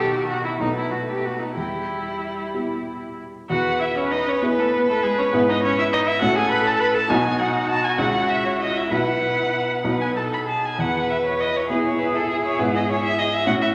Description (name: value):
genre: quick classical-period movement for piano quartet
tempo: 61-70 BPM (dotted quarters)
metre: 6/8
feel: rubato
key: E minor, E major from 3.5 s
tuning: A4 = 440 Hz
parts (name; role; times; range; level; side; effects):
- muted violin; melody; 0.0-13.7 s; F#4 to B5; -27 LUFS; equal; none
- muted cello; second line; 0.0-13.7 s; D#4 to B4; -27 LUFS; equal; none
- dark baby grand piano; accompaniment; 0.0-13.7 s; B1 to A4; -28 LUFS; equal; none
- muted viola; accompaniment; 0.0-13.7 s; D#3 to B4; -30 LUFS; equal; none
room: wet recital hall reverb, RT60 1.7 s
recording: none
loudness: -22 LUFS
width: mono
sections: 0.0-3.5 A section; 3.5-13.7 A section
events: none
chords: 0.0 B; 0.6 B5; 1.6 Em; 3.5 E; 5.3 E/G#; 6.2 F#m7/A; 7.1 B; 8.0 C#m; 8.9 Bsus4; 9.8 B; 10.8 E; 12.6 E/G#